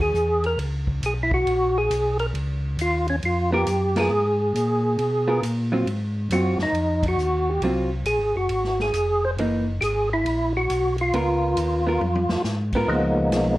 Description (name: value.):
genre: soul jazz organ trio.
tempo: 136 BPM.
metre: 4/4.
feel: swing 66% on 8ths.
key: Db mixolydian.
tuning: A4 = 440 Hz.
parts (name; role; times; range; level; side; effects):
percussive tonewheel organ; melody; 0.0-13.6 s; F3 to C5; -22 LUFS; equal; slow rotary speaker, chorus vibrato.
mellow tonewheel organ; bass; 0.0-13.6 s; F1 to Cb3; -26 LUFS; equal; none.
swinging big-band drum kit; drums; 0.1-13.5 s; crash cymbal, hi-hat, kick drum, ride cymbal, snare drum, toms; -33 LUFS; equal; none.
vintage hollow-body jazz guitar; accompaniment; 3.5-12.9 s; Fb3 to Bb4; -25 LUFS; right 1 dB; none.
room: light reverb.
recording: worn, warbling old tape, cassette tape, warbly pitch drift.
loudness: -20 LUFS.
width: side -17 dB against mid.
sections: 0.0-12.9 A section.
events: band accent 3.9, 7.0; drum fill 12.0-12.4.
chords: 0.0 Gb9; 2.3 Db13; 5.9 Ab13; 9.4 Gb13; 11.1 Db13.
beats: 0.14 | 0.58 1.02 1.46 1.90 | 2.34 2.78 3.22 3.66 | 4.10 4.54 4.98 5.42 | 5.86 6.30 6.74 7.18 | 7.62 8.06 8.50 8.94 | 9.38 9.82 10.26 10.69 | 11.13 11.57 12.01 12.45 | 12.89 13.33.